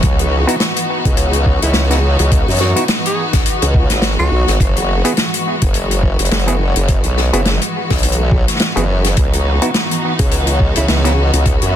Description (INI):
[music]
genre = glitch hop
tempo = 105 BPM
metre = 4/4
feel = swing 57% on 16ths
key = C# minor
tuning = A4 = 439 Hz
[part]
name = rich studio string section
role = sustained chords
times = 0.0-11.8 s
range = E3 to F#4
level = -20 LUFS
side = left 2 dB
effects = sidechain pumping
[part]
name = formant-sweep wobble bass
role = bass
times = 0.0-11.8 s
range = F#1 to F#2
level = -15 LUFS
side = equal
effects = chorus, overdrive
[part]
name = electronic kick drum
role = drums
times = 0.0-11.6 s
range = none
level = -15 LUFS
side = equal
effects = none
[part]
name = open jazz drum kit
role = drums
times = 0.0-11.7 s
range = hi-hat, snare drum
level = -18 LUFS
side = left 1 dB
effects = none
[part]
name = auto-wah clav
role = stabs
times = 0.5-11.1 s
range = B3 to G#4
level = -21 LUFS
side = right 1 dB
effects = sidechain pumping, tape echo
[part]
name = mellow tenor saxophone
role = melody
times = 1.6-4.6, 10.8-11.0 s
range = E4 to G#4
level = -22 LUFS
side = right 1 dB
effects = tape echo
[sound]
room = light reverb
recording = dense, heavily limited modern master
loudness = -12 LUFS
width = side -10 dB against mid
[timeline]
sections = 0.0-11.8 A section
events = none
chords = 0.0 C#m11; 4.6 F#9sus4; 9.2 C#m11